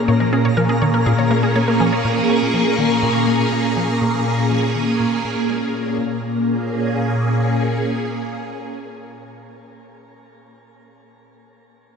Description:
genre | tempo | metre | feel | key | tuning
ambient, sequencer-driven space music | 122 BPM | 4/4 | straight | Bb minor | A4 = 440 Hz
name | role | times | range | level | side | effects
phased string machine | sustained chords | 0.0-9.7 s | Bb2 to Ab4 | -18 LUFS | equal | ensemble chorus, phaser, shimmer reverb
wide unison pluck | arpeggios | 0.0-2.0 s | Ab4 to Db5 | -26 LUFS | equal | auto-pan, tape echo, shimmer reverb
twinkling granular texture | texture | 0.0-6.0 s | Bb3 to Bb4 | -26 LUFS | equal | built-in reverb, shimmer reverb
tight sequencer bass | riff | 0.1-6.2 s | Bb2 to Db4 | -24 LUFS | equal | lush chorus, tape echo, shimmer reverb
room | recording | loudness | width
wet plate reverb, RT60 3.2 s | none | -16 LUFS | side -6 dB against mid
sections
0.0-6.0 A section; 6.0-9.9 B section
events
fade-out on analog synth bass 0.0-6.0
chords
0.0 Bbm7

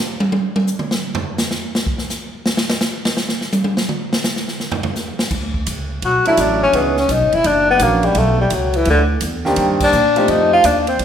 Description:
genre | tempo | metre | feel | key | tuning
jazz, small-group swing and bop | 169 BPM | 4/4 | swing 66% on 8ths | unclear | A4 = 440 Hz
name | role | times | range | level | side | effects
swinging big-band drum kit | drums | 0.2-11.0 s | crash cymbal, hi-hat, kick drum, ride cymbal, snare drum, toms | -20 LUFS | right 1 dB | none
upright bass | bass | 5.3-11.0 s | E1 to Bb2 | -20 LUFS | equal | none
warm tenor saxophone | melody | 6.0-11.0 s | D3 to F#4 | -14 LUFS | left 2 dB | none
warm baby grand piano | accompaniment | 6.3-10.6 s | Eb3 to A4 | -20 LUFS | right 2 dB | none
room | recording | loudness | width
wet recital hall reverb, RT60 1.3 s | recorded in a church or concert hall | -15 LUFS | side -8 dB against mid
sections
0.0-5.3 A section; 5.3-11.0 B section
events
drum solo 0.0-5.3; band accent 9.8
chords
0.0 N.C.; 5.3 Dmaj9; 6.7 C#m9; 7.4 F#7b13; 8.2 Bmadd9; 9.6 Cm9; 10.3 F7

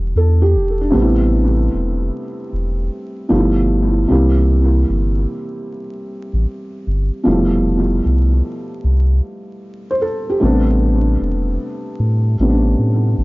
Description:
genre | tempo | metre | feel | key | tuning
lo-fi hip hop | 76 BPM | 4/4 | swing 65% on 16ths | A minor | A4 = 442 Hz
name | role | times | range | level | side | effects
felt-muted upright piano | accompaniment | 0.0-13.2 s | B2 to C5 | -18 LUFS | equal | low-pass filter, tape echo
warm sub bass | bass | 0.0-13.2 s | E1 to A2 | -15 LUFS | equal | none
room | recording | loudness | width
light reverb, studio reverb | echo-heavy mix, vinyl crackle, nothing above 7.5 kHz | -14 LUFS | side -22 dB against mid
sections
0.0-13.2 A section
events
none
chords
0.0 Em7; 0.9 Am9; 3.3 G13; 4.1 C7; 7.3 Fmaj9#11; 10.4 Am11

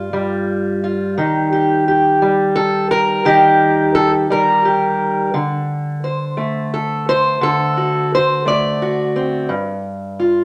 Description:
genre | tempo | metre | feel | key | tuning
acoustic country blues, solo or duo | 58 BPM (dotted quarters) | 12/8 | straight | unclear | A4 = 439 Hz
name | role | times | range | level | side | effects
fingerpicked steel-string acoustic guitar | solo | 0.0-10.4 s | G2 to D5 | -17 LUFS | equal | none
room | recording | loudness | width
moderate studio reverb, RT60 0.9 s | none | -17 LUFS | mono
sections
0.0-10.4 A section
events
none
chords
0.0 Gm7; 1.2 Eb; 5.3 D7; 9.5 G7(no3)

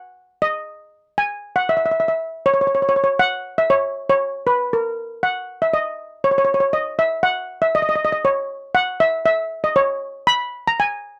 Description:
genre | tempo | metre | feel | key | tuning
calypso | 118 BPM | 4/4 | straight | unclear | A4 = 436 Hz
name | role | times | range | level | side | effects
steel pan | solo | 0.0-11.2 s | A#4 to B5 | -20 LUFS | equal | none
room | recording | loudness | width
light reverb | dry, close 1970s-style studio recording | -20 LUFS | mono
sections
0.0-5.7 A section; 5.7-11.2 B section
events
none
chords
none

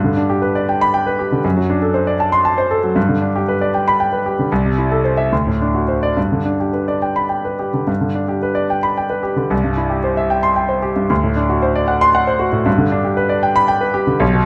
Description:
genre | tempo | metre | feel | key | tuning
classical, virtuoso piano study | 69-80 BPM (dotted quarters) | 6/8 | rubato | G major | A4 = 440 Hz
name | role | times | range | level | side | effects
clear concert grand piano | solo | 0.0-14.5 s | B1 to C6 | -17 LUFS | equal | none
room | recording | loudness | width
moderate recital hall reverb, RT60 1.4 s | close, detailed microphones | -17 LUFS | mono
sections
0.0-7.9 A section; 7.9-14.5 A section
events
none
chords
0.0 G; 1.4 D7/F#; 3.0 G; 4.5 Am/C; 5.3 D7; 6.2 G; 9.5 C; 11.1 D7; 12.7 G

